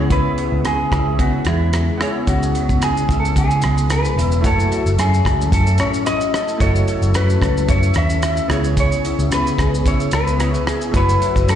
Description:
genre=indie pop, bedroom pop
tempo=111 BPM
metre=4/4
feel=swing 55% on 16ths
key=F# minor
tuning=A4 = 445 Hz
part: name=chorused retro synth keys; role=accompaniment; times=0.0-11.6 s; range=A3 to C#5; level=-27 LUFS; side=right 4 dB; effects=slapback echo
part: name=electric guitar through a small old amp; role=accompaniment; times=0.0-11.6 s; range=C#3 to A4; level=-23 LUFS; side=left 5 dB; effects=ensemble chorus, vibrato effect, slapback echo
part: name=vintage muted picked electric bass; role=bass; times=0.0-11.6 s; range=E1 to C#3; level=-18 LUFS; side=right 1 dB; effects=none
part: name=electric guitar through a small old amp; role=melody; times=0.1-11.6 s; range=E4 to E5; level=-22 LUFS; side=equal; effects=wide subtle chorus, slapback echo, analog delay
part: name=damped 70s drum kit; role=drums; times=0.1-11.6 s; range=hi-hat, kick drum, rim click, shaker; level=-22 LUFS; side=equal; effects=none
room=studio reverb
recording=live gig heard through the venue's PA, recital hall reverb, nothing above 10.4 kHz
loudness=-15 LUFS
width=side -10 dB against mid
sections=0.0-11.6 A section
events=none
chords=0.0 C#m7; 4.4 F#m7; 8.5 C#m7; 10.9 F#m7

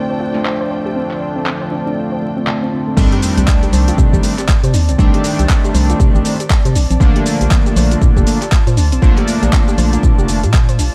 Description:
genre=deep house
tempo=119 BPM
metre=4/4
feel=swing 60% on 16ths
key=C dorian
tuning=A4 = 438 Hz
part: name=warbly tape-like pad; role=sustained chords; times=0.0-10.9 s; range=Eb3 to A5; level=-30 LUFS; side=equal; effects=chorus, built-in reverb, vintage 12-bit sampler grit, sidechain pumping
part: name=soft round pluck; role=arpeggios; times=0.0-10.8 s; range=C3 to C5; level=-28 LUFS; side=equal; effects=chorus, sidechain pumping, digital delay
part: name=chorused polysynth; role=stabs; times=0.0-10.4 s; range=D3 to D4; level=-21 LUFS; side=equal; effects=cassette tape, sidechain pumping, tape echo
part: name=warbly tape-like pad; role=texture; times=0.0-10.9 s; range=Eb3 to A5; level=-31 LUFS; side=equal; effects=none
part: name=warm symphonic violin section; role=texture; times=0.0-3.0 s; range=G5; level=-35 LUFS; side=equal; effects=sidechain pumping
part: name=deep house drum kit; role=drums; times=0.4-10.9 s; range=crash cymbal, handclaps, hi-hat, shaker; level=-25 LUFS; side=equal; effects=low-pass filter on snare, low-pass filter on cymbals, low-pass filter on perc, low-pass filter on hats, low-pass filter on room
part: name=organ-like FM bass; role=bass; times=3.0-10.9 s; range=F1 to C3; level=-17 LUFS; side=equal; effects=sidechain pumping
part: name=electronic kick drum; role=drums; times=3.0-10.7 s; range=none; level=-15 LUFS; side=equal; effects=none
part: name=sub drop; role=sound effects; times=3.1-5.0 s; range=none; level=-26 LUFS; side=equal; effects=none
room=light reverb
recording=vinyl crackle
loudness=-14 LUFS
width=mono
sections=0.0-3.0 A section; 3.0-10.9 B section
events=drop 3.0-10.9; impact 3.0-5.0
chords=0.0 Dm7; 3.0 Cm69; 6.8 Bbmaj7

